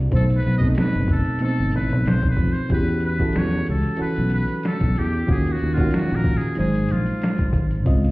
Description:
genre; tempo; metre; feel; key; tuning
R&B, neo-soul; 93 BPM; 4/4; swing 54% on 16ths; unclear; A4 = 440 Hz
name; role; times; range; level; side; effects
reed electric piano; accompaniment; 0.0-8.1 s; B2 to D#5; -24 LUFS; right 1 dB; overdrive, plate reverb
fretless electric bass; bass; 0.0-8.1 s; F#1 to F2; -21 LUFS; equal; lush chorus
boom bap sampler-style drum kit; drums; 0.1-8.1 s; finger snaps, hi-hat, kick drum, snare drum; -23 LUFS; equal; none
trumpet with metal mute; melody; 0.2-7.6 s; F4 to D#5; -30 LUFS; left 1 dB; plate reverb, tape echo
room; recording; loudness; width
light reverb; heard muffled through a wall, stone room reverb, EQ; -18 LUFS; side -20 dB against mid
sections
0.0-8.1 A section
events
muted trumpet solo 0.0-8.1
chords
0.1 B7b9; 2.7 Em69; 5.3 D#m9; 6.6 G#7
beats
| 0.12 0.76 1.41 2.05 | 2.70 3.34 3.99 4.63 | 5.28 5.92 6.57 7.21 | 7.86

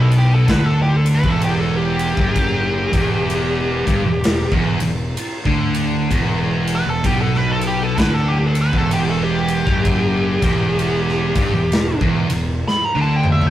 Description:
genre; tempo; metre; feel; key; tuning
stoner and doom metal; 64 BPM; 4/4; swing 61% on 8ths; E minor; A4 = 442 Hz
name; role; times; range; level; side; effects
fuzz lead guitar; melody; 0.0-13.5 s; G4 to B5; -22 LUFS; equal; wah, distortion
scooped high-gain guitar; riff; 0.0-13.5 s; E2 to D3; -26 LUFS; left 1 dB; distortion
thick fuzz guitar; riff; 0.0-13.5 s; E2 to D3; -22 LUFS; left 2 dB; distortion
thick fuzz guitar; riff; 0.0-13.5 s; E2 to D3; -22 LUFS; right 4 dB; distortion
fuzz fingered electric bass; bass; 0.0-13.5 s; E1 to D2; -24 LUFS; left 1 dB; overdrive
big rock drum kit; drums; 0.1-13.5 s; kick drum, ride cymbal, snare drum, toms; -22 LUFS; equal; none
room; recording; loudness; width
light reverb; rough rehearsal-room recording, warm saturation; -15 LUFS; side -12 dB against mid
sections
0.0-13.5 A section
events
lead electric guitar solo 0.0-13.5; drum fill 12.7-13.5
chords
0.0 Em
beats
0.48 1.42 | 2.36 3.29 4.23 5.17 | 6.10 7.04 7.98 8.91 | 9.85 10.79 11.73 12.66

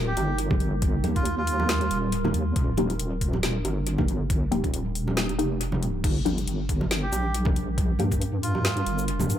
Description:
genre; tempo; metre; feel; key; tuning
deep dubstep; 138 BPM; 4/4; swing 56% on 16ths, half-time; unclear; A4 = 440 Hz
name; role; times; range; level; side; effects
deep dark ambient pad; sustained chords; 0.0-9.4 s; G3 to Bb4; -33 LUFS; right 1 dB; chorus, built-in reverb
deep soft wobble bass; bass; 0.0-9.4 s; Eb1 to G2; -27 LUFS; equal; chorus, tube saturation
melodica; melody; 0.1-2.0, 7.0-9.0 s; F4 to G4; -32 LUFS; right 1 dB; dub echo
garage drum kit; drums; 0.2-9.4 s; crash cymbal, hi-hat, shaker, snare drum; -31 LUFS; left 1 dB; analog delay
bongos and congas; percussion; 0.2-9.3 s; none; -32 LUFS; right 2 dB; dub echo
filtered dub chord stab; stabs; 0.5-9.4 s; Bb3 to G4; -31 LUFS; left 2 dB; phaser, analog chorus, dub echo
electronic kick drum; drums; 0.5-8.2 s; none; -26 LUFS; equal; none
room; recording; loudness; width
light reverb; echo-heavy mix; -23 LUFS; side -10 dB against mid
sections
0.0-9.4 A section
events
filter sweep on synth stab 0.0-9.4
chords
0.0 Eb; 6.0 Gm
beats
0.39 | 0.82 1.25 1.69 2.12 | 2.56 2.99 3.43 3.86 | 4.30 4.73 5.17 5.60 | 6.04 6.47 6.91 7.34 | 7.78 8.21 8.65 9.08

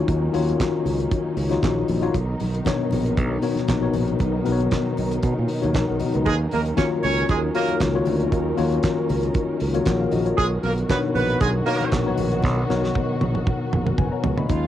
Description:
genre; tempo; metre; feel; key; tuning
disco; 117 BPM; 4/4; straight; unclear; A4 = 441 Hz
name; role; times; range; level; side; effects
tine electric piano; accompaniment; 0.0-14.7 s; B2 to B5; -24 LUFS; left 5 dB; overdrive, fast stereo tremolo, cassette tape
dark studio string section; sustained chords; 0.0-14.7 s; Eb3 to A#4; -28 LUFS; right 2 dB; cassette tape
fingered electric bass; bass; 0.0-14.7 s; F#1 to B2; -25 LUFS; right 2 dB; none
damped 70s drum kit; drums; 0.1-14.6 s; handclaps, hi-hat, kick drum, snare drum, toms; -25 LUFS; right 2 dB; cassette tape
congas; percussion; 0.4-14.6 s; none; -35 LUFS; left 6 dB; none
clear horn section; stabs; 6.3-11.9 s; Ab3 to Db5; -24 LUFS; right 3 dB; cassette tape
rich studio violin section; second line; 14.5-14.7 s; F4 to F5; -36 LUFS; right 10 dB; cassette tape
room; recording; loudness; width
light reverb; home recording on cassette; -19 LUFS; side -12 dB against mid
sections
0.0-14.5 A section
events
drum fill 12.4-14.5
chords
0.0 Ebm7; 2.1 Bmaj7; 6.3 Ebm7; 10.4 Bmaj7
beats
| 0.08 0.60 1.11 1.63 | 2.14 2.66 3.17 3.69 | 4.20 4.72 5.23 5.75 | 6.26 6.78 7.29 7.81 | 8.32 8.84 9.35 9.86 | 10.38 10.89 11.41 11.92 | 12.44 12.95 13.46 13.98 | 14.49

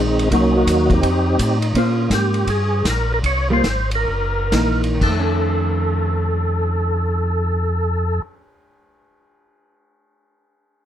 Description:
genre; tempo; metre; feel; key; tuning
soul jazz organ trio; 117-168 BPM; 4/4; swing 64% on 8ths; unclear; A4 = 439 Hz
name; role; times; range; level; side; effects
percussive tonewheel organ; melody; 0.0-8.2 s; Gb3 to Db5; -21 LUFS; equal; slow rotary speaker, overdrive, chorus vibrato
vintage hollow-body jazz guitar; accompaniment; 0.0-8.4 s; Eb3 to C5; -22 LUFS; right 1 dB; none
mellow tonewheel organ; bass; 0.0-8.2 s; Gb1 to Bb2; -20 LUFS; equal; slow rotary speaker
vintage drum kit; drums; 0.2-5.2 s; crash cymbal, hi-hat, kick drum, ride cymbal, snare drum; -25 LUFS; equal; none
room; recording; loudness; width
little or no reverb; none; -16 LUFS; side -10 dB against mid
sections
0.0-1.7 A section; 1.7-5.0 B section; 5.0-9.1 C section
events
slowing down 1.7-5.0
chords
0.3 Cm7b5; 1.0 F7; 1.7 Bbm9; 2.5 Gm; 3.2 C7sus4; 4.1 Gb6; 5.0 F7b13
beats
| 0.31 0.67 1.02 1.38 | 1.74 2.10 2.46 2.84 | 3.23 3.64 4.07 4.52 | 5.01 5.53 6.04 6.55 | 7.06 7.57 8.08

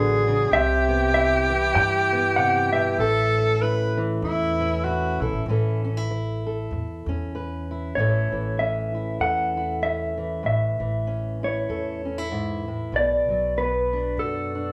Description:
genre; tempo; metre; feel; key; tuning
acoustic folk duo or small band; 97 BPM; 4/4; swing 58% on 8ths; A major; A4 = 440 Hz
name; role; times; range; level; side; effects
warm tenor saxophone; second line; 0.0-5.5 s; E4 to B4; -25 LUFS; equal; none
fingerpicked steel-string acoustic guitar; accompaniment; 0.0-14.7 s; G#2 to B4; -30 LUFS; equal; none
upright bass; bass; 0.0-14.7 s; A1 to G2; -30 LUFS; equal; none
mellow electric guitar; melody; 0.5-14.7 s; A4 to G5; -27 LUFS; equal; harmonic tremolo
room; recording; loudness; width
moderate large studio reverb, RT60 0.9 s; band playing live in one room; -24 LUFS; mono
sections
0.0-5.5 A section; 5.5-8.0 B section; 8.0-14.7 C section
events
none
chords
0.0 D6; 0.5 Cmaj7; 3.0 A; 5.5 Aadd9; 8.0 A; 12.9 Bm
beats
| 0.52 1.14 1.76 2.38 | 3.00 3.62 4.23 4.85 | 5.47 6.09 6.71 7.34 | 7.96 8.58 9.20 9.82 | 10.45 11.07 11.69 12.31 | 12.93 13.55 14.18

